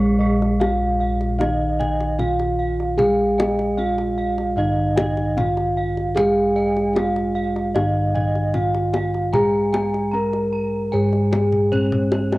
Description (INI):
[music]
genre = Javanese gamelan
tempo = 75 BPM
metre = 4/4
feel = straight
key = unclear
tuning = A4 = 440 Hz
[part]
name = gamelan-type bronze metallophone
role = melody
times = 0.0-12.4 s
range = Ab3-40c to Bb4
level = -24 LUFS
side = right 1 dB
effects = none
[part]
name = gamelan-type bronze metallophone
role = accompaniment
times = 0.0-12.4 s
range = Eb3-20c to Ab3-40c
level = -25 LUFS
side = right 1 dB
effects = none
[part]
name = gamelan-type bossed gongs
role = arpeggios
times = 0.0-12.2 s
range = Ab4-40c to Bb5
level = -27 LUFS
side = left 1 dB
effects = tape echo
[part]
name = gamelan-type bronze metallophone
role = arpeggios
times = 0.0-12.4 s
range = Ab4-40c to Bb5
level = -28 LUFS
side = right 1 dB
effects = tape echo
[part]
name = gamelan-type bossed gongs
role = bass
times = 0.0-12.4 s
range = Bb1 to Ab4-40c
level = -23 LUFS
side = left 1 dB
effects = none
[part]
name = kendang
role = percussion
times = 0.4-12.4 s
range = none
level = -26 LUFS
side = left 1 dB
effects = none
[sound]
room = moderate spring reverb, RT60 1.9 s, small room reverb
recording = home recording on cassette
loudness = -18 LUFS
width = side -19 dB against mid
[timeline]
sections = 0.0-12.4 A section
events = drum fill 11.5-12.4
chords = none